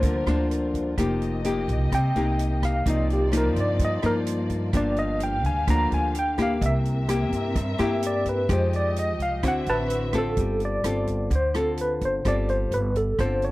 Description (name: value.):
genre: bossa nova.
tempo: 128 BPM.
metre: 4/4.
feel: straight.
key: unclear.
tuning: A4 = 441 Hz.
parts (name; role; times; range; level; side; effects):
tine electric piano; melody; 0.0-13.5 s; G4 to Bb5; -26 LUFS; equal; medium tremolo.
nylon-string guitar; accompaniment; 0.0-13.5 s; G2 to A4; -27 LUFS; left 2 dB; none.
dark symphonic string section; sustained chords; 0.0-10.4 s; G3 to F5; -35 LUFS; equal; none.
upright bass; bass; 0.0-13.5 s; F1 to G2; -26 LUFS; right 1 dB; none.
swinging big-band drum kit; drums; 0.0-13.5 s; hi-hat, kick drum, rim click; -30 LUFS; right 1 dB; none.
room: little or no reverb.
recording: dry, close 1970s-style studio recording.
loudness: -22 LUFS.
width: side -18 dB against mid.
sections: 0.0-10.4 A section; 10.4-13.5 B section.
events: tine electric piano solo 0.0-10.4.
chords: 0.0 Gm7; 1.0 F9sus4; 2.9 Cm11; 4.7 Gm7; 6.6 C7; 8.5 Fm9; 9.4 D9; 10.4 G9sus4.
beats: 0.04 0.51 | 0.98 1.45 1.92 2.39 | 2.86 3.33 3.80 4.27 | 4.74 5.21 5.67 6.14 | 6.61 7.08 7.55 8.02 | 8.49 8.96 9.43 9.90 | 10.37 10.84 11.31 11.78 | 12.25 12.72 13.19.